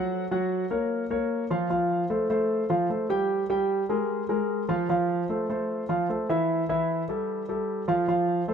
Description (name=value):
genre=jazz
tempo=150 BPM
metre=4/4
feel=straight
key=F major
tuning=A4 = 440 Hz
part: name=warm grand piano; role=solo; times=0.0-8.5 s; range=E3 to G5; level=-24 LUFS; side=equal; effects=tape echo
room=light reverb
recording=close, detailed microphones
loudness=-24 LUFS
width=side -7 dB against mid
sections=0.0-8.1 A section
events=none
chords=0.1 Gb; 1.7 F; 2.5 Fadd9; 3.3 Gm; 4.1 Fmadd11; 4.9 Fmaj7; 6.5 Emadd11; 7.3 Fadd9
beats=| 0.10 0.50 0.90 1.30 | 1.70 2.10 2.50 2.89 | 3.29 3.69 4.09 4.49 | 4.89 5.29 5.69 6.09 | 6.49 6.89 7.29 7.68 | 8.08 8.48